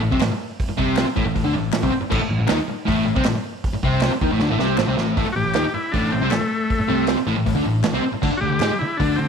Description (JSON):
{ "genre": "garage rock duo or trio", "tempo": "157 BPM", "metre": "4/4", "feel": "straight", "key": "A minor", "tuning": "A4 = 440 Hz", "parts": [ { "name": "fuzz guitar", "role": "riff", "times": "0.0-9.3 s", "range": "A2 to G#4", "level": "-21 LUFS", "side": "left 1 dB", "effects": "distortion" }, { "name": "picked electric bass", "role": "bass", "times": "0.0-9.3 s", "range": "A1 to G#2", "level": "-25 LUFS", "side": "equal", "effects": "overdrive" }, { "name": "vintage drum kit", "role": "drums", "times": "0.1-9.1 s", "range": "crash cymbal, hi-hat, kick drum, snare drum", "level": "-25 LUFS", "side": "right 3 dB", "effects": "none" }, { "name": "group handclap", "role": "percussion", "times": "0.2-8.7 s", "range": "none", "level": "-35 LUFS", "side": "left 12 dB", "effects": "none" }, { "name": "overdriven combo organ", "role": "melody", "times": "5.3-9.3 s", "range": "A3 to G4", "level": "-23 LUFS", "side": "left 3 dB", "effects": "none" } ], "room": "moderate echo chamber reverb, RT60 1.3 s, studio reverb", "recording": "1960s-style stereo", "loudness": "-18 LUFS", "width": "side -6 dB against mid", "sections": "0.0-5.2 A section; 5.2-9.3 B section", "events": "drum fill 4.4-5.2; transistor combo organ solo 5.2-9.3", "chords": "0.0 Am; 8.2 D5" }